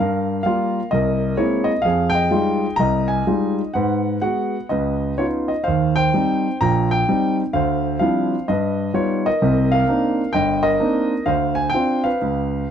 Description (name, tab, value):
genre	solo jazz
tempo	128 BPM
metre	4/4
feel	swing 66% on 8ths, rubato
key	C minor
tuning	A4 = 440 Hz
part	warm concert grand piano	solo	0.0-12.7 s	G1 to Bb5	-17 LUFS	equal	none
room	moderate studio reverb, RT60 0.7 s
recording	dark, warm production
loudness	-17 LUFS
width	side -8 dB against mid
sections	0.0-12.7 A section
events	none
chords	0.0 Gm7; 0.9 C7alt; 1.9 Fm9; 3.7 Abm7; 4.7 Db9; 5.6 Eb6; 7.5 Dm11; 8.5 G7alt; 9.4 Cm9; 11.3 Dm7b5